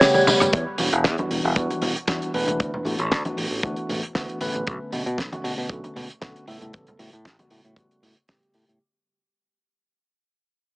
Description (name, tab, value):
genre	nu-disco, nu disco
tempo	116 BPM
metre	4/4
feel	swing 53% on 16ths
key	E dorian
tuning	A4 = 441 Hz
part	tine electric piano	accompaniment	0.0-8.8 s	C#3 to B4	-27 LUFS	equal	medium stereo tremolo, sidechain pumping, low-pass filter, tape echo
part	lush unison pad	sustained chords	0.0-0.5 s	G3 to F#5	-32 LUFS	equal	none
part	analog pluck	arpeggios	0.0-0.5 s	C#3 to G3	-28 LUFS	right 1 dB	none
part	damped 70s drum kit	drums	0.0-8.8 s	hi-hat, rim click, snare drum, tambourine, toms	-24 LUFS	equal	none
part	congas	percussion	0.3-8.1 s	none	-31 LUFS	equal	none
part	fingered electric bass	bass	0.5-8.8 s	E1 to B2	-27 LUFS	equal	none
part	kick drum	drums	0.5-8.4 s	none	-25 LUFS	equal	none
room	light reverb, studio ambience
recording	small speaker sound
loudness	-21 LUFS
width	side -25 dB against mid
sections	0.5-8.8 A section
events	break 0.0-0.5; drum fill 0.1-0.5; fade-out 0.5-8.8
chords	0.0 A13; 0.5 Em9; 2.6 D69; 4.7 Bm9; 6.5 A13